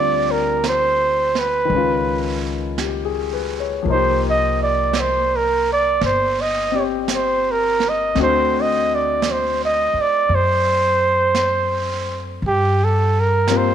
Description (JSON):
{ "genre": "jazz ballad", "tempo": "56 BPM", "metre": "4/4", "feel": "swing 66% on 8ths", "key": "unclear", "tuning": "A4 = 440 Hz", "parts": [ { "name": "warm flugelhorn", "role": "melody", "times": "0.0-13.7 s", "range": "G4 to Eb5", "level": "-17 LUFS", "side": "right 2 dB", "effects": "none" }, { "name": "warm concert grand piano", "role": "accompaniment", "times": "0.0-13.7 s", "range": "D3 to C#5", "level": "-24 LUFS", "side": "left 10 dB", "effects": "none" }, { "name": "upright bass", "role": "bass", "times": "0.0-13.7 s", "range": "G1 to G2", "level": "-25 LUFS", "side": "left 1 dB", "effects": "none" }, { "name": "jazz brush drum kit", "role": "drums", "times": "0.6-13.7 s", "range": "brushed snare drum, hi-hat, snare drum", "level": "-29 LUFS", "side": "right 7 dB", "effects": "none" } ], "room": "moderate echo chamber reverb, RT60 2.0 s", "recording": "1960s-style stereo with parts hard left and right", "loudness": "-16 LUFS", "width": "side -9 dB against mid", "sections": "0.0-13.7 A section", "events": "none", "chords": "0.0 Bb69/D (rootless); 1.7 C#add9; 3.9 Cm7; 8.2 D7; 12.4 Gm7" }